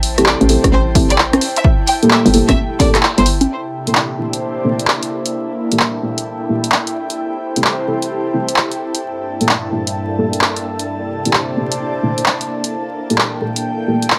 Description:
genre	UK garage, two-step garage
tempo	130 BPM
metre	4/4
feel	swing 65% on 16ths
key	G dorian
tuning	A4 = 441 Hz
part	hollow knocking FM bass	bass	0.0-3.5 s	G1 to A1	-17 LUFS	equal	none
part	punchy analog drum machine	drums	0.0-14.2 s	congas, handclaps, hi-hat, rim click	-18 LUFS	equal	none
part	airy breathy pad	texture	0.0-14.2 s	Bb3 to A5	-26 LUFS	equal	chorus, sidechain pumping
part	deep mellow chord stab	stabs	0.2-14.1 s	Bb3 to A4	-21 LUFS	equal	chorus, phaser, tape echo
part	clear studio violin section	melody	0.3-3.3 s	C5 to G5	-24 LUFS	equal	tape echo
part	electronic kick drum	drums	0.6-2.9 s	none	-17 LUFS	equal	none
part	soft string machine	sustained chords	3.5-14.2 s	G2 to A4	-27 LUFS	equal	phaser, ensemble chorus, sidechain pumping
room	light reverb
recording	vinyl crackle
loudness	-16 LUFS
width	mono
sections	0.0-3.5 A section; 3.5-14.2 B section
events	filter sweep on synth stab 0.0-3.5; kick drops out 3.0-3.5; band accent 3.0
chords	0.0 Am7; 1.6 Gm69; 3.5 C13; 5.1 Gm69/Bb; 7.0 Am7; 9.0 Gm69; 10.9 C13; 12.5 Gm69/Bb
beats	0.26 0.72 1.18 | 1.64 2.10 2.57 3.03 | 3.49 3.95 4.41 4.88 | 5.34 5.80 6.26 6.72 | 7.18 7.64 8.11 8.57 | 9.03 9.49 9.95 10.41 | 10.88 11.34 11.80 12.26 | 12.72 13.18 13.64 14.11

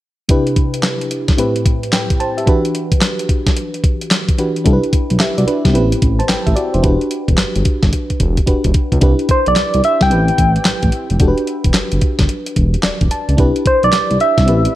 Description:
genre	R&B, new jack swing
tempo	110 BPM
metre	4/4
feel	swing 64% on 16ths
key	E minor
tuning	A4 = 440 Hz
part	FM electric piano with auto-pan	accompaniment	0.3-14.8 s	A2 to A5	-19 LUFS	equal	none
part	clean 12-bit digital drum machine	drums	0.3-14.7 s	handclaps, hi-hat, kick drum, snare drum	-15 LUFS	equal	none
part	smooth synth bass	bass	4.7-14.7 s	E1 to C#2	-16 LUFS	equal	none
part	soft struck synth lead	melody	9.3-14.8 s	C5 to G5	-15 LUFS	equal	chorus, phaser
room	light reverb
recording	none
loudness	-12 LUFS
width	side -14 dB against mid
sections	0.3-9.0 A section; 9.0-14.8 B section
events	drum fill 7.9-9.0; FM electric piano fill 12.6-13.4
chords	0.3 Cmaj9; 1.4 Am9; 2.5 Em7; 4.7 Cmaj9; 5.7 Am9; 6.8 Em7; 9.0 Cmaj9; 10.1 Am9; 11.2 Em7; 13.4 Cmaj9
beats	| 0.29 0.84 1.38 1.93 | 2.47 3.02 3.56 4.11 | 4.66 5.20 5.75 6.29 | 6.84 7.38 7.93 8.47 | 9.02 9.56 10.11 10.65 | 11.20 11.75 12.29 12.84 | 13.38 13.93 14.47

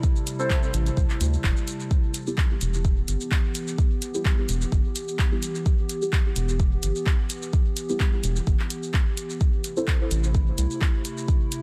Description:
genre	dub techno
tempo	128 BPM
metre	4/4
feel	swing 54% on 16ths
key	E minor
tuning	A4 = 442 Hz
part	warbly tape-like pad	sustained chords	0.0-11.6 s	C3 to G4	-35 LUFS	equal	chorus, built-in reverb, sidechain pumping
part	deep house drum kit	drums	0.0-11.6 s	handclaps, hi-hat, shaker	-34 LUFS	equal	dub echo
part	electronic kick drum	drums	0.0-11.4 s	none	-24 LUFS	equal	none
part	drifting glass-harmonics texture	texture	0.0-1.9 s	A3 to A4	-53 LUFS	equal	none
part	deep mellow chord stab	stabs	0.4-10.0 s	G3 to C5	-34 LUFS	equal	chorus, phaser, cassette tape, sidechain pumping, dub echo
part	round analog bass	bass	0.7-10.7 s	E1 to D2	-27 LUFS	equal	sidechain pumping
room	little or no reverb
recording	none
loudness	-24 LUFS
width	mono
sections	0.0-1.9 A section; 1.9-11.6 A section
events	none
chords	0.0 Am; 1.9 Em; 9.4 Am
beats	| 0.03 0.50 0.97 1.44 | 1.91 2.38 2.85 3.31 | 3.78 4.25 4.72 5.19 | 5.66 6.13 6.60 7.07 | 7.53 8.00 8.47 8.94 | 9.41 9.88 10.35 10.81 | 11.28

